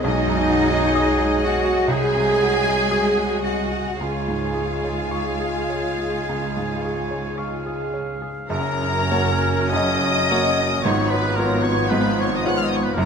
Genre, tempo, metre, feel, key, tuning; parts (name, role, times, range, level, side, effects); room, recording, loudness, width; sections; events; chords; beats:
classical, romantic movement for piano and orchestra; 46-65 BPM; 4/4; rubato; A4 = 439 Hz
clear baby grand piano; melody; 0.0-13.1 s; F#1 to D#6; -25 LUFS; equal
warm symphonic violin section; melody; 0.0-13.1 s; C#5 to F#6; -30 LUFS; left 4 dB
clear clarinet; second line; 0.0-13.1 s; A#3 to G#4; -31 LUFS; left 1 dB
clear oboe; second line; 0.0-13.1 s; G#4 to F#5; -31 LUFS; equal
warm symphonic violin section; second line; 0.0-13.1 s; A#4 to G#5; -29 LUFS; left 1 dB
mellow bassoon; accompaniment; 0.0-13.1 s; E#3 to G#3; -32 LUFS; right 1 dB
warm symphonic viola section; accompaniment; 0.0-13.1 s; G#3 to G#4; -29 LUFS; right 2 dB
mellow French horn section; sustained chords; 0.0-13.1 s; E#3 to G#4; -28 LUFS; left 2 dB
dark chamber double bass section; bass; 0.0-13.1 s; F#1 to C#2; -29 LUFS; right 3 dB
warm symphonic cello section; bass; 0.0-13.1 s; F#2 to G#4; -27 LUFS; right 2 dB
hollow flute section; second line; 0.1-13.1 s; A#4 to G#5; -30 LUFS; left 1 dB
light reverb; -18 LUFS; side -6 dB against mid
0.0-8.5 A section; 8.5-13.1 B section
0.0 G#m7/B; 1.9 G#7/B#; 4.0 C#; 8.5 F#; 10.8 C#7/G#
| 0.04 0.98 1.91 2.90 | 3.98 5.11 6.24 7.35 | 8.49 9.72 10.83 11.88 | 12.94